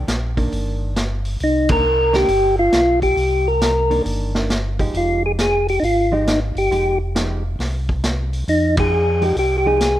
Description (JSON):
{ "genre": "soul jazz organ trio", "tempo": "136 BPM", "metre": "4/4", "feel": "swing 66% on 8ths", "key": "C minor", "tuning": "A4 = 435 Hz", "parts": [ { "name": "hollow-body jazz guitar", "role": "accompaniment", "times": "0.0-9.8 s", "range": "Eb3 to G4", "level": "-27 LUFS", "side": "right 2 dB", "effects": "none" }, { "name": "mellow tonewheel organ", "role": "bass", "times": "0.0-10.0 s", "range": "F1 to F2", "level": "-22 LUFS", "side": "equal", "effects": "slow rotary speaker" }, { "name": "vintage drum kit", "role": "drums", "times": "0.1-9.9 s", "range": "hi-hat, kick drum, ride cymbal, snare drum", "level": "-24 LUFS", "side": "equal", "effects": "none" }, { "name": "percussive tonewheel organ", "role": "melody", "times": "1.4-10.0 s", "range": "Eb4 to Bb4", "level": "-17 LUFS", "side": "equal", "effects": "slow rotary speaker" } ], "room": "light reverb, small room ambience", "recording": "rough home demo mix", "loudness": "-16 LUFS", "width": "side -13 dB against mid", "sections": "0.0-10.0 A section", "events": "band accent 1.6, 8.7", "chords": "0.0 Cm9; 4.9 Fm9" }